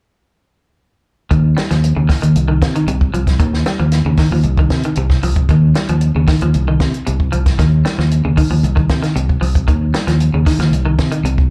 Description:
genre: afrobeat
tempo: 115 BPM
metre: 4/4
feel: straight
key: Eb mixolydian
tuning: A4 = 436 Hz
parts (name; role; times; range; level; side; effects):
- electric guitar at the edge of break-up; arpeggios; 1.3-11.5 s; C3 to G3; -21 LUFS; equal; subtle chorus, slapback echo
- fingered electric bass; bass; 1.3-11.5 s; C2 to C3; -17 LUFS; equal; none
- compact cocktail drum kit; drums; 1.3-11.5 s; hi-hat, kick drum, snare drum; -19 LUFS; equal; none
room: little or no reverb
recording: live gig heard through the venue's PA, club reverb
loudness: -15 LUFS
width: mono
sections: 1.3-11.5 A section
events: none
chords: 1.3 Ebsus2; 2.4 Cm; 3.4 Ebsus2; 4.5 Cm; 5.5 Ebsus2; 6.5 Cm; 7.6 Ebsus2; 8.6 Cm; 9.7 Ebsus2; 10.7 Cm

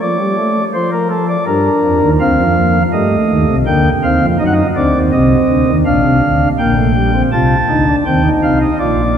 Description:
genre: classical, baroque-style 3-part fugue for pipe organ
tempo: 82 BPM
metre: 4/4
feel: straight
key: G minor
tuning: A4 = 438 Hz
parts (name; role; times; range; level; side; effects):
- pipe organ, flutes; solo; 0.0-9.2 s; Bb1 to A5; -11 LUFS; equal; none
room: wet cathedral reverb, RT60 4.5 s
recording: none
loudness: -11 LUFS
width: side -8 dB against mid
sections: 0.0-7.3 A section; 7.3-9.2 B section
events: none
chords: 0.0 Dm/F; 1.5 Gm; 2.9 Am7b5; 4.4 D7b9; 5.9 Gm/Bb; 7.3 Cm

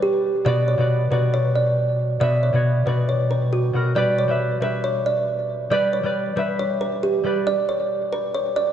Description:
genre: hip hop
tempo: 137 BPM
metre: 4/4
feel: half-time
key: B minor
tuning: A4 = 440 Hz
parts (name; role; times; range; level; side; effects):
- kalimba; melody; 0.0-8.7 s; F#4 to D5; -21 LUFS; right 2 dB; low-pass filter, tape echo
- concert harp; accompaniment; 0.0-8.1 s; B2 to E5; -22 LUFS; left 1 dB; low-pass filter
room: wet church reverb, RT60 3.3 s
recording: dreamy mix soaked in reverb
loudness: -19 LUFS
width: side -9 dB against mid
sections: 0.5-7.5 A section; 7.5-8.7 B section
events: none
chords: 0.5 Bm; 4.0 G; 7.5 N.C.

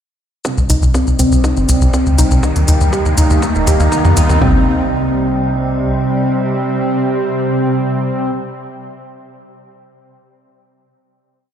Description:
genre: melodic techno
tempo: 121 BPM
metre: 4/4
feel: straight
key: C minor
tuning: A4 = 440 Hz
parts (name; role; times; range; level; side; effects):
- dark analog pad; sustained chords; 0.9-8.3 s; C4 to Bb5; -25 LUFS; left 2 dB; chorus, phaser, sidechain pumping
- woody wave-folded pluck; arpeggios; 0.4-4.6 s; C4 to G4; -21 LUFS; left 1 dB; chorus, sidechain pumping, digital delay
- analog synth brass; stabs; 0.4-8.3 s; C3 to Eb4; -17 LUFS; right 2 dB; chorus, sidechain pumping, digital delay
- electronic shaker and hi-hat; drums; 0.4-4.4 s; none; -24 LUFS; left 2 dB; none
- techno drum kit; drums; 0.4-4.5 s; kick drum, toms; -19 LUFS; equal; high-pass filter on kick, high-pass filter on toms
- riser; sound effects; 1.0-4.4 s; none; -25 LUFS; left 2 dB; none
- swarming drone; drone; 1.4-8.3 s; C3 to G3; -27 LUFS; equal; built-in reverb, sidechain pumping
- tight sequencer bass; bass; 0.6-5.9 s; Eb1 to F2; -13 LUFS; equal; tube saturation, sidechain pumping
room: light reverb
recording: played on a big sound system in a bare room, large studio reverb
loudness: -12 LUFS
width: side -9 dB against mid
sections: 0.4-4.4 build; 4.4-8.4 final chord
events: build-up 0.4-4.4; filter sweep on synth pluck 0.4-4.4; filter sweep on analog polysynth 0.4-4.4; riser 1.0-4.4; drum fill 2.4-4.4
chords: 0.4 Cmadd9; 2.4 Ebadd9; 4.4 Cmadd9

